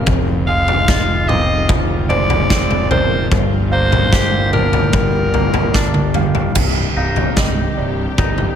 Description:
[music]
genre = post-rock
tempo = 74 BPM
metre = 4/4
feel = straight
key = C minor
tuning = A4 = 440 Hz
[part]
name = dark studio string section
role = sustained chords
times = 0.0-8.6 s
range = D3 to G4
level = -28 LUFS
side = left 1 dB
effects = none
[part]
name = felt-muted upright piano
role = arpeggios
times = 0.0-8.6 s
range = Bb4 to D6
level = -29 LUFS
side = right 6 dB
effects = slapback echo
[part]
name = twangy electric guitar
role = arpeggios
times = 0.0-8.6 s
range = C2 to G4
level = -24 LUFS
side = left 4 dB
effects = spring reverb, slapback echo
[part]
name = fuzz fingered electric bass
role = bass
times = 0.0-8.5 s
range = C1 to G1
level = -20 LUFS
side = equal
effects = overdrive
[part]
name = big rock drum kit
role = drums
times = 0.1-8.6 s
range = crash cymbal, kick drum, snare drum, toms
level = -16 LUFS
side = equal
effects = none
[part]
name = raspy alto saxophone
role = melody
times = 0.5-6.1 s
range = Bb4 to F5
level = -19 LUFS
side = equal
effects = slapback echo
[sound]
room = light reverb, small room ambience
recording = none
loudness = -13 LUFS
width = side -8 dB against mid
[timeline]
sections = 0.0-6.6 A section; 6.6-8.6 B section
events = drum fill 5.8-6.6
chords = 0.1 Fm7; 3.3 Gm7; 6.6 Cm

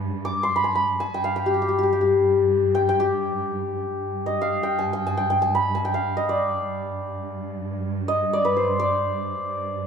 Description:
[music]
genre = Persian modal ensemble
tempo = free time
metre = none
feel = none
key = G dastgah homayun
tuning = A4 = 440 Hz
[part]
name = santur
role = melody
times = 0.0-9.9 s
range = G4 to D6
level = -22 LUFS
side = left 2 dB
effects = none
[part]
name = warm chamber cello section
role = drone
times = 0.0-9.9 s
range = G2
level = -29 LUFS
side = right 2 dB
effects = none
[sound]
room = moderate recital hall reverb, RT60 1.4 s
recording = none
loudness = -21 LUFS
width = side -6 dB against mid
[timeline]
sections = 0.0-3.9 A section; 3.9-9.9 A section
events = none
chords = none

